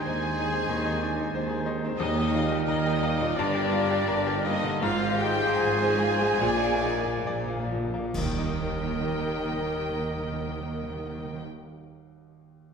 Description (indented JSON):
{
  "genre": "classical, romantic movement for piano and orchestra",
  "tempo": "64-94 BPM",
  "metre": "4/4",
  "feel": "rubato",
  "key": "Eb major",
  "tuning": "A4 = 440 Hz",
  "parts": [
    { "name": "clear baby grand piano", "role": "melody", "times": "0.0-12.7 s", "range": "Eb2 to Eb5", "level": "-31 LUFS", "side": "left 2 dB", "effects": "none" },
    { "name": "rich chamber violin section", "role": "melody", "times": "0.0-11.4 s", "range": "D5 to Ab5", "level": "-36 LUFS", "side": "left 3 dB", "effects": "none" },
    { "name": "clear clarinet", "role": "second line", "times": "0.0-11.4 s", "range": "Bb4 to D5", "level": "-38 LUFS", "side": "equal", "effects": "none" },
    { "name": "clear oboe", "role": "second line", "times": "0.0-11.4 s", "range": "D5 to Ab5", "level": "-37 LUFS", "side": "right 1 dB", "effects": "none" },
    { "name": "mellow hollow flute section", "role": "second line", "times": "0.0-11.4 s", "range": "Bb4 to Ab5", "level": "-35 LUFS", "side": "right 4 dB", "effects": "none" },
    { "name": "rich chamber violin section", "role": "second line", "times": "0.0-11.4 s", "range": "D4 to Ab4", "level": "-37 LUFS", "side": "left 4 dB", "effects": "none" },
    { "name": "mellow bassoon", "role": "accompaniment", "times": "0.0-11.4 s", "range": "Eb3 to Ab3", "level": "-40 LUFS", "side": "right 1 dB", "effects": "none" },
    { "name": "rich chamber viola section", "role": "accompaniment", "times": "0.0-11.4 s", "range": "D4 to Ab4", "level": "-36 LUFS", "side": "right 3 dB", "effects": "none" },
    { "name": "dark French horn section", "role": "sustained chords", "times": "0.0-11.4 s", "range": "Eb3 to Bb4", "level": "-34 LUFS", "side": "left 3 dB", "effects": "none" },
    { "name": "mellow trumpet section", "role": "stabs", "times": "0.0-11.4 s", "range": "Bb4 to Eb5", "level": "-39 LUFS", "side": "equal", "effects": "none" },
    { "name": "dark chamber double bass section", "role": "bass", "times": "0.0-11.4 s", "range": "G1 to Eb2", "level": "-35 LUFS", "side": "right 3 dB", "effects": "none" },
    { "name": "warm chamber cello section", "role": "bass", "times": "0.0-11.4 s", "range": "G2 to Eb3", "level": "-36 LUFS", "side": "right 1 dB", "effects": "none" },
    { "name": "timpani", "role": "percussion", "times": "0.0-11.4 s", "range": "Bb2 to Eb3", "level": "-39 LUFS", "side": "right 1 dB", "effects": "none" },
    { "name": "warm tuba", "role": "bass", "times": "0.1-11.4 s", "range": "G1 to Eb2", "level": "-36 LUFS", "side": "right 4 dB", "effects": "none" },
    { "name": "clash cymbals and concert bass drum", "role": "percussion", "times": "8.1-9.8 s", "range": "none", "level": "-37 LUFS", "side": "equal", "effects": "none" }
  ],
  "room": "wet scoring stage reverb, RT60 1.5 s",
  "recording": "minimal, uncompressed stereo recording",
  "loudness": "-24 LUFS",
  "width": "side -6 dB against mid",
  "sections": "0.0-8.1 A section; 8.1-11.5 B section",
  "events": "slowing down 0.7-8.1; timpani fill 6.4-8.1; band accent 8.1-9.0",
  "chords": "0.0 Ab/Eb; 2.0 Eb; 3.4 Gm; 4.8 Fm/Ab; 6.4 Bb7; 8.1 Eb"
}